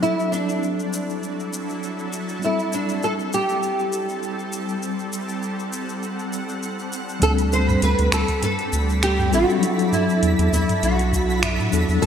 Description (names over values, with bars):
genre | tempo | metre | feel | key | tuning
sunset chillout | 100 BPM | 4/4 | swing 54% on 16ths | A dorian | A4 = 436 Hz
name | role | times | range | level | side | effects
nylon-string guitar | melody | 0.0-12.1 s | D4 to C5 | -24 LUFS | right 1 dB | ensemble chorus, ping-pong delay
mellow tine electric piano | accompaniment | 0.0-12.1 s | F#3 to A4 | -25 LUFS | moving between left 5 dB and right 2 dB | medium stereo tremolo, auto-pan
shimmering ambient pad | sustained chords | 0.0-12.1 s | F#3 to A5 | -30 LUFS | equal | chorus, built-in reverb
smooth R&B drum kit | drums | 0.0-12.1 s | finger snaps, hi-hat, shaker, toms | -28 LUFS | right 1 dB | studio reverb, gated reverb
round analog bass | bass | 7.2-12.1 s | A1 to A2 | -21 LUFS | right 1 dB | tube saturation
electronic kick drum | drums | 7.2-12.1 s | none | -25 LUFS | right 1 dB | studio reverb
twinkling granular texture | texture | 7.4-12.1 s | B5 | -32 LUFS | right 2 dB | built-in reverb, analog chorus
room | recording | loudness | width
wet lush hall reverb, RT60 2.4 s | bright 1980s-style digital production | -20 LUFS | side -8 dB against mid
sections
0.0-7.2 A section; 7.2-12.1 B section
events
none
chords
0.0 E9sus4; 2.4 Am7; 7.2 D7sus4; 9.6 E9sus4